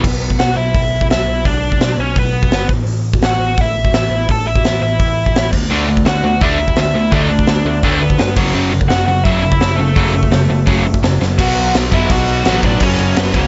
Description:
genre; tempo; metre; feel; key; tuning
punk rock; 169 BPM; 4/4; straight; B minor; A4 = 439 Hz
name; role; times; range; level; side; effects
biting overdriven guitar; riff; 0.0-0.5, 5.7-11.4 s; F#2 to D4; -23 LUFS; equal; none
overdriven semi-hollow guitar; riff; 0.0-0.5, 5.7-13.5 s; F#2 to D4; -20 LUFS; equal; none
overdriven picked electric bass; bass; 0.0-13.5 s; F#1 to A2; -21 LUFS; equal; none
big rock drum kit; drums; 0.0-13.4 s; crash cymbal, hi-hat, kick drum, snare drum; -19 LUFS; equal; none
biting lead guitar; melody; 0.4-13.5 s; A3 to A5; -21 LUFS; equal; overdrive
room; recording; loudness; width
little or no reverb; nothing above 7.7 kHz; -14 LUFS; mono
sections
0.0-11.4 A section; 11.4-13.5 B section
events
drum fill 11.2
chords
0.0 Bm; 2.7 A5; 5.5 D; 8.4 F#m; 11.4 Bm; 12.8 F#5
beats
| 0.04 0.39 0.75 1.10 | 1.45 1.81 2.16 2.52 | 2.87 3.23 3.58 3.94 | 4.29 4.64 5.00 5.36 | 5.71 6.07 6.42 6.78 | 7.13 7.49 7.84 8.20 | 8.55 8.90 9.26 9.62 | 9.97 10.32 10.68 11.04 | 11.39 11.74 12.10 12.45 | 12.81 13.16

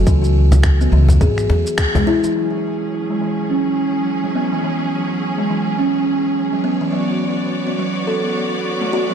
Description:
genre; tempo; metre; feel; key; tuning
organic downtempo; 105 BPM; 4/4; swing 59% on 16ths; unclear; A4 = 440 Hz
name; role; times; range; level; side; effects
buzzing kalimba; arpeggios; 0.0-9.1 s; E3 to A4; -18 LUFS; right 1 dB; low-pass filter, ping-pong delay
upright bass; bass; 0.0-1.6 s; G#1 to E2; -13 LUFS; equal; sidechain pumping
electronic kick drum; drums; 0.1-1.9 s; none; -16 LUFS; equal; none
electronic shaker, congas and finger snaps; drums; 0.1-2.3 s; none; -22 LUFS; right 1 dB; none
cajon; percussion; 0.5-2.3 s; none; -21 LUFS; left 2 dB; none
bright studio string section; sustained chords; 2.3-9.1 s; F#3 to D5; -24 LUFS; equal; sidechain pumping
room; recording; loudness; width
light reverb, studio reverb; dark, warm production; -15 LUFS; side -8 dB against mid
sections
0.0-2.4 A section; 2.4-9.1 B section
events
band accent 1.8; filter sweep on kalimba 2.4-9.1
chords
0.1 C#m; 2.4 F#7sus2; 6.9 Bm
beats
| 0.07 0.64 1.21 1.78 | 2.35 2.93 3.50 4.07 | 4.64 5.21 5.78 6.36 | 6.93 7.50 8.07 8.64

